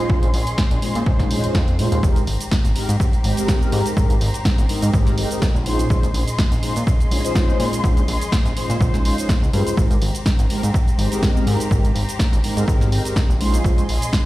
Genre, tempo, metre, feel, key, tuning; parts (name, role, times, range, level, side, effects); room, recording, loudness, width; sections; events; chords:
filtered disco house; 124 BPM; 4/4; swing 54% on 16ths; Ab major; A4 = 439 Hz
mellow synth brass; accompaniment; 0.0-13.8 s; Ab3 to Db5; -24 LUFS; equal; chorus, phaser, sidechain pumping, low-pass filter
muted studio violin section; sustained chords; 0.0-14.3 s; Db4 to C6; -30 LUFS; left 1 dB; sidechain pumping, low-pass filter
fat analog bass; bass; 0.1-14.0 s; Ab1 to Bb2; -21 LUFS; equal; sidechain pumping, low-pass filter
electronic kick drum; drums; 0.1-14.2 s; -19 LUFS; equal
tambourine; percussion; 0.1-14.2 s; barely audible
punchy analog drum machine; drums; 0.2-14.2 s; hi-hat, shaker, snare drum; -27 LUFS; right 1 dB
little or no reverb; played on a big sound system in a bare room, stone room reverb; -16 LUFS; side -17 dB against mid
0.0-14.3 A section
0.0 Bbm11; 2.0 Abmaj9; 5.7 Bbm11; 9.8 Abmaj9; 13.4 Bbm11